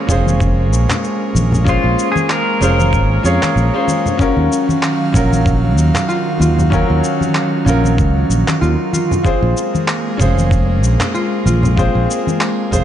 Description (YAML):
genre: sunset chillout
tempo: 95 BPM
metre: 4/4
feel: swing 57% on 16ths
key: Eb minor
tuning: A4 = 439 Hz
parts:
  - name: bright grand piano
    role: accompaniment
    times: 0.0-12.8 s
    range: Gb3 to Db5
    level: -20 LUFS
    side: moving between left 5 dB and right 3 dB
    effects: auto-pan, analog delay
  - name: airy breathy pad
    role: sustained chords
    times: 0.0-12.8 s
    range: Eb3 to F5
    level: -21 LUFS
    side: right 1 dB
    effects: chorus
  - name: fingered electric bass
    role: bass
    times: 0.1-12.8 s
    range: F1 to F2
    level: -14 LUFS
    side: equal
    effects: none
  - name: electronic kick drum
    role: drums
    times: 0.1-12.8 s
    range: none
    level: -17 LUFS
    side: equal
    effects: overdrive
  - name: electronic shaker and handclaps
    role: drums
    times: 0.1-12.8 s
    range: none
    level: -24 LUFS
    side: equal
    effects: overdrive
  - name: congas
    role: percussion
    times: 0.1-12.8 s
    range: none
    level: -22 LUFS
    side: left 2 dB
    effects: none
  - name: pedal steel guitar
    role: melody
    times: 1.7-3.9 s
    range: F4 to Bb4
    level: -20 LUFS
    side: equal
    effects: lush chorus, analog delay
  - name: concert harp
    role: arpeggios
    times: 4.2-12.8 s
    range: C4 to F4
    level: -22 LUFS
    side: equal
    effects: analog delay
room: moderate plate reverb, RT60 2.7 s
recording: dreamy mix soaked in reverb, nothing above 10.8 kHz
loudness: -12 LUFS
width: side -10 dB against mid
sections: 0.0-12.8 A section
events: none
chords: 0.0 Bbm9; 4.2 Ebm9; 9.2 Bbm9